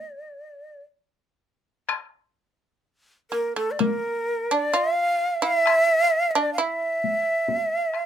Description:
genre	japanese traditional, Japanese chamber music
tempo	52-68 BPM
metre	4/4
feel	rubato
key	D hirajoshi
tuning	A4 = 442 Hz
part	breathy bright shakuhachi	melody	0.0-8.1 s	A4 to F5	-22 LUFS	right 1 dB	none
part	shamisen	second line	0.0-8.1 s	A3 to F4	-26 LUFS	right 3 dB	none
part	taiko ensemble	percussion	1.9-8.1 s	none	-26 LUFS	left 6 dB	none
room	light reverb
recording	minimal, uncompressed stereo recording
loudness	-21 LUFS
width	side -9 dB against mid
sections	0.0-1.9 A section; 1.9-8.1 B section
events	none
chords	none

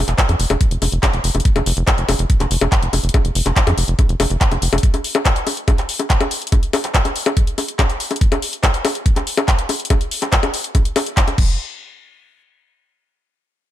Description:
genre	psychedelic trance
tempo	142 BPM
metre	4/4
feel	straight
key	unclear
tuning	A4 = 441 Hz
part	tight sequencer bass	bass	0.0-4.8, 11.4-11.6 s	F1 to F2	-18 LUFS	equal	none
part	drum and bass drum kit	drums	0.1-11.5 s	bongos, crash cymbal, handclaps, hi-hat	-19 LUFS	left 2 dB	none
part	electronic kick drum	drums	0.2-11.5 s	none	-16 LUFS	equal	none
room	little or no reverb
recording	none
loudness	-15 LUFS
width	side -12 dB against mid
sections	0.0-11.6 A section; 11.6-13.3 B section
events	none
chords	none

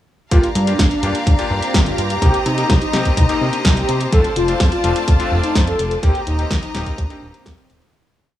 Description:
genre	italo disco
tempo	126 BPM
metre	4/4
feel	straight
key	G minor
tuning	A4 = 439 Hz
part	mellow synth brass	melody	0.3-7.8 s	C4 to A4	-22 LUFS	left 1 dB	chorus, tape echo
part	clear studio string section	sustained chords	0.3-7.9 s	F4 to Bb5	-24 LUFS	left 1 dB	none
part	bright electric grand piano	stabs	0.3-7.9 s	A3 to G4	-26 LUFS	left 4 dB	none
part	fat analog bass	bass	0.3-7.8 s	Eb1 to C3	-20 LUFS	equal	none
part	electronic kick drum	drums	0.3-7.6 s	none	-16 LUFS	equal	none
part	house drum kit	drums	0.3-7.9 s	hi-hat, snare drum	-22 LUFS	equal	none
room	digital ambience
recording	dry, gritty hardware recording, transformer saturation, small room ambience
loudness	-14 LUFS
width	side -12 dB against mid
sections	0.3-7.9 verse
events	fade-out 5.4-7.9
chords	0.3 Gm7; 2.2 Cm7; 4.1 F6; 6.0 Eb6

